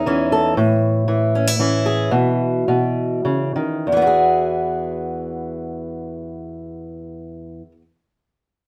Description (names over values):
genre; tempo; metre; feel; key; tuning
folk, solo fingerstyle acoustic guitar; 95-119 BPM; 3/4; straight; E major; A4 = 440 Hz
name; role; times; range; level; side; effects
fingerpicked acoustic archtop guitar; solo; 0.0-7.8 s; E2 to A4; -20 LUFS; equal; none
room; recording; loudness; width
light reverb; band playing live in one room; -19 LUFS; mono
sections
0.0-3.9 A section; 3.9-7.6 B section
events
slowing down 0.6-3.9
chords
0.0 C#madd9/E; 0.6 A; 2.1 Bsus4; 2.7 B; 3.9 Eadd9